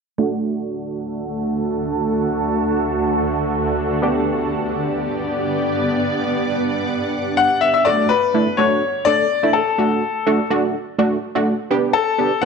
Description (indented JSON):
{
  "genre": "pop",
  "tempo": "125 BPM",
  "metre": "4/4",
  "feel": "straight",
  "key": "D major",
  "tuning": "A4 = 440 Hz",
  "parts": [
    { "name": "funky polysynth comp", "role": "accompaniment", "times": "0.2-12.4 s", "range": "A3 to A4", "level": "-21 LUFS", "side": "right 2 dB", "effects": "chorus, low-pass filter" },
    { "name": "shimmering ambient pad", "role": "sustained chords", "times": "0.9-7.8 s", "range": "D2 to F#5", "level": "-21 LUFS", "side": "right 1 dB", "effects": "chorus, built-in reverb, low-pass filter" },
    { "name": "clear concert grand piano", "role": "melody", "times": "7.4-12.4 s", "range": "A4 to F#5", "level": "-16 LUFS", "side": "left 6 dB", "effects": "slapback echo" }
  ],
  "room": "moderate echo chamber reverb, RT60 1.6 s, small room ambience",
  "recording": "none",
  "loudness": "-17 LUFS",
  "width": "side -5 dB against mid",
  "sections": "0.2-7.9 A section; 7.9-12.4 B section",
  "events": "filter sweep 0.2-7.9",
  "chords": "0.2 D; 4.0 G; 7.9 D; 11.7 G"
}